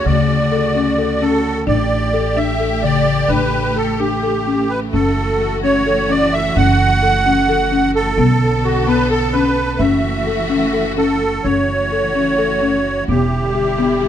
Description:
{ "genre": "contemporary instrumental, chamber music in an uneven meter", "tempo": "259 BPM (eighths)", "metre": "7/8", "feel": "straight", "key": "unclear", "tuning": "A4 = 444 Hz", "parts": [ { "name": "musette accordion", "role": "melody", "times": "0.0-14.1 s", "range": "F#4 to F#5", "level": "-18 LUFS", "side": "right 3 dB", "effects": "none" }, { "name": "rich symphonic string section", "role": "sustained chords", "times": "0.0-14.1 s", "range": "C#3 to A4", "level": "-24 LUFS", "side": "equal", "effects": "none" }, { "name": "upright bass", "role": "bass", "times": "0.0-14.1 s", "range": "E1 to D2", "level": "-21 LUFS", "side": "right 2 dB", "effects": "none" }, { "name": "buzzing marimba with soft mallets", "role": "arpeggios", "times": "0.1-14.1 s", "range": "C#3 to A4", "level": "-18 LUFS", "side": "left 5 dB", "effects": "none" } ], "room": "moderate recital hall reverb, RT60 1.4 s", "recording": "none", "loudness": "-14 LUFS", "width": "side -10 dB against mid", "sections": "0.0-11.5 A section; 11.5-14.1 B section", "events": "none", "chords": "0.0 Dmaj7; 1.7 A7sus4; 4.9 F#m7; 8.2 Bm7; 9.8 F#m7; 13.1 Em7" }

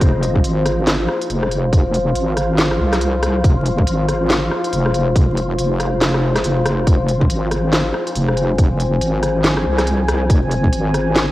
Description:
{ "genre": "deep dubstep", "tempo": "140 BPM", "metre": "4/4", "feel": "swing 60% on 16ths, half-time", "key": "F minor", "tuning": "A4 = 440 Hz", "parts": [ { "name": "deep dark ambient pad", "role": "sustained chords", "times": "0.0-11.3 s", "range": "F4 to Ab5", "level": "-22 LUFS", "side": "left 2 dB", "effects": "chorus, built-in reverb, cassette tape" }, { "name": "wobble bass", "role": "bass", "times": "0.0-11.3 s", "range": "F1 to C2", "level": "-18 LUFS", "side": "equal", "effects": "chorus" }, { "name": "electronic kick drum", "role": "drums", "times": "0.0-10.7 s", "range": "none", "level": "-15 LUFS", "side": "equal", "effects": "none" }, { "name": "garage drum kit", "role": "drums", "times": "0.0-11.3 s", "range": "hi-hat, rim click, snare drum", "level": "-21 LUFS", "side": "equal", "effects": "none" }, { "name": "wind-like tuned noise texture", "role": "texture", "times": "0.1-11.3 s", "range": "F3 to F4", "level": "-29 LUFS", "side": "equal", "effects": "built-in reverb, cassette tape" } ], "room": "light reverb, digital ambience", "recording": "home recording on cassette, vinyl crackle", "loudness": "-14 LUFS", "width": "side -16 dB against mid", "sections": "0.0-11.3 A section", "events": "none", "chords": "0.0 F5" }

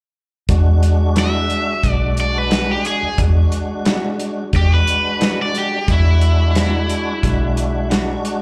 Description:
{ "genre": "straight-eighth soul blues", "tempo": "89 BPM", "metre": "4/4", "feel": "straight", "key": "E mixolydian", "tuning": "A4 = 441 Hz", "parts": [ { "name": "tonewheel organ", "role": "accompaniment", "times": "0.5-8.4 s", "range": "G#3 to F#4", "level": "-25 LUFS", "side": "equal", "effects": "overdrive, chorus vibrato, slow rotary speaker" }, { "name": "vintage muted fingered electric bass", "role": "bass", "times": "0.5-8.2 s", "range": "B1 to E2", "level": "-18 LUFS", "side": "equal", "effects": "none" }, { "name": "warm soul drum kit", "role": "drums", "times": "0.5-8.4 s", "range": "hi-hat, kick drum, snare drum", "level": "-23 LUFS", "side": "equal", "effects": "none" }, { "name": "cranked stack guitar", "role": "melody", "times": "1.2-7.9 s", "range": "E4 to E5", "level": "-23 LUFS", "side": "equal", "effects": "overdrive" }, { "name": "electric guitar through a small old amp", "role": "stabs", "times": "1.2-8.1 s", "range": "E3 to F#4", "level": "-32 LUFS", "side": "equal", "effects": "slapback echo" } ], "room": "studio reverb", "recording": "live gig heard through the venue's PA, club reverb", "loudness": "-17 LUFS", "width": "mono", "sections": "0.5-8.4 A section", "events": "none", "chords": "0.5 E9" }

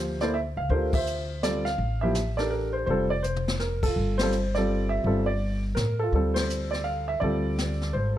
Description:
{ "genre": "jazz piano trio", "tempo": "166 BPM", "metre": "3/4", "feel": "swing 64% on 8ths", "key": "D minor", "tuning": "A4 = 441 Hz", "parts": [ { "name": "warm baby grand piano", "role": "melody", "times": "0.0-8.2 s", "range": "F3 to F5", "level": "-27 LUFS", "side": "right 1 dB", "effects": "none" }, { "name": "upright bass", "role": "bass", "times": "0.0-8.2 s", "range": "F1 to A2", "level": "-28 LUFS", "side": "equal", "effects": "none" }, { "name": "jazz brush drum kit", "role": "drums", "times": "0.2-8.2 s", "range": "brushed snare drum, crash cymbal, hi-hat, kick drum, ride cymbal, snare drum, toms", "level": "-32 LUFS", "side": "left 2 dB", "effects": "none" } ], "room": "light reverb", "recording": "dark, warm production", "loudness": "-24 LUFS", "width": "side -12 dB against mid", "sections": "0.0-8.2 A section", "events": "band accent 0.9, 4.1, 6.3; drum fill 3.2-3.6", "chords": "0.0 Dm7; 4.0 G5; 6.1 Dm7" }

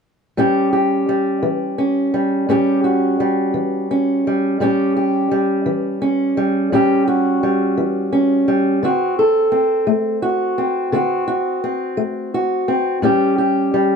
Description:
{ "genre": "blues", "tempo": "57 BPM (dotted quarters)", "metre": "12/8", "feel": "straight", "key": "unclear", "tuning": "A4 = 440 Hz", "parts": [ { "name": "fingerpicked old ladder-braced acoustic guitar", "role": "accompaniment", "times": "0.4-14.0 s", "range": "A2 to A4", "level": "-15 LUFS", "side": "equal", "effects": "none" } ], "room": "light reverb", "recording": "none", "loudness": "-15 LUFS", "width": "side -6 dB against mid", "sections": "0.4-14.0 A section", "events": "none", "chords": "0.4 A7; 8.8 D7; 13.0 A7" }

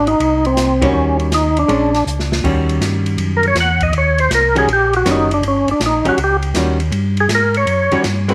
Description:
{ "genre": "soul jazz organ trio", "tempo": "160 BPM", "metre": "4/4", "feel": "swing 66% on 8ths", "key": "Eb mixolydian", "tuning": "A4 = 440 Hz", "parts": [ { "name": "percussive tonewheel organ", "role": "melody", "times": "0.0-8.0 s", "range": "C4 to F#5", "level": "-17 LUFS", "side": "equal", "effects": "slow rotary speaker, overdrive, chorus vibrato" }, { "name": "mellow tonewheel organ", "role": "bass", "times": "0.0-8.3 s", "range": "F#1 to Ab2", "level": "-21 LUFS", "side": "equal", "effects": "slow rotary speaker" }, { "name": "open jazz drum kit", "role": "drums", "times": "0.1-8.3 s", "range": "crash cymbal, hi-hat, kick drum, ride cymbal, snare drum", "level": "-26 LUFS", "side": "equal", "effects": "none" }, { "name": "archtop guitar, miked and amplified", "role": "accompaniment", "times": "0.8-8.3 s", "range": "Eb3 to Cb5", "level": "-22 LUFS", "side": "equal", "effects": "none" } ], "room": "moderate echo chamber reverb, RT60 1.3 s, studio ambience", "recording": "none", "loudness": "-15 LUFS", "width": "mono", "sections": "0.0-2.4 A section; 2.4-8.3 B section", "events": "band accent 0.8; drum fill 2.1-2.4; tonewheel organ solo 2.4-8.3", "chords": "0.0 Ab; 0.9 Eb7#9; 1.7 Bb7#9; 2.4 Eb7#9" }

